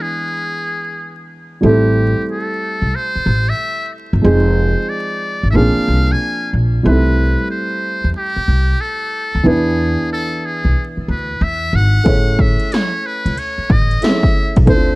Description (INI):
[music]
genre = hip hop, jazz-hop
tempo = 92 BPM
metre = 4/4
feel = swing 66% on 16ths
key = A minor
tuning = A4 = 436 Hz
[part]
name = trumpet with metal mute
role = melody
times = 0.0-15.0 s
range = G4 to Ab5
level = -21 LUFS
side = equal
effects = tape echo
[part]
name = dark baby grand piano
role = accompaniment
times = 0.0-15.0 s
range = E3 to E5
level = -18 LUFS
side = right 1 dB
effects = none
[part]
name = upright bass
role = bass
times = 1.6-15.0 s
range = F1 to E2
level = -15 LUFS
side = equal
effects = none
[part]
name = 80s electronic pad drums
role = drums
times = 12.1-14.9 s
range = hi-hat, kick drum, ride cymbal, snare drum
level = -14 LUFS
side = equal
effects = none
[sound]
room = light reverb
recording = dark, warm production, vinyl crackle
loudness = -14 LUFS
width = side -21 dB against mid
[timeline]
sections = 0.0-1.6 A section; 1.6-15.0 B section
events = break 0.0-1.6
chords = 0.0 E7; 1.6 Am7; 4.2 Fm7; 5.5 Bb9; 6.8 C6; 9.5 E7; 12.1 Amaj7